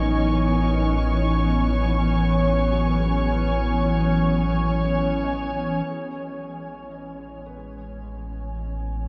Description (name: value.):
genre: ambient.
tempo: free time.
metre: none.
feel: none.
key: A major.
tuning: A4 = 440 Hz.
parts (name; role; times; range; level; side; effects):
glassy FM pad; sustained chords; 0.0-9.1 s; E3 to G#5; -26 LUFS; equal; ensemble chorus, built-in reverb.
felt-muted upright piano; arpeggios; 0.0-9.1 s; F#3 to F#5; -43 LUFS; equal; none.
warm sub bass; bass; 0.0-9.1 s; A1; -27 LUFS; equal; none.
bowed-like drone; drone; 0.0-6.0 s; none; barely audible; none; none.
muted studio violin section; texture; 0.0-5.9 s; C#6; -35 LUFS; equal; none.
room: wet huge ambient reverb, RT60 7.1 s.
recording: dark, warm production.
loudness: -22 LUFS.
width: mono.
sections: 0.0-5.9 A section; 5.9-9.1 B section.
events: none.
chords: 0.0 C#m7/A.